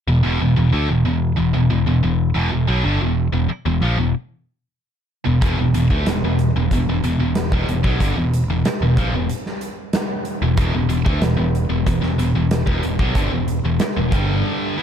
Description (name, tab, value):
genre	hard rock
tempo	93 BPM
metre	4/4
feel	straight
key	unclear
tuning	A4 = 440 Hz
part	high-gain distorted guitar	riff	0.1-14.8 s	E2 to E4	-19 LUFS	equal	distortion
part	modern bright picked electric bass	bass	0.1-14.4 s	E1 to D2	-20 LUFS	equal	none
part	big rock drum kit	drums	5.4-14.3 s	hi-hat, kick drum, snare drum	-22 LUFS	equal	none
room	light reverb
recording	none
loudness	-16 LUFS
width	side -8 dB against mid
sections	0.0-14.8 A section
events	break 14.4-14.8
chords	0.0 E5; 14.1 G5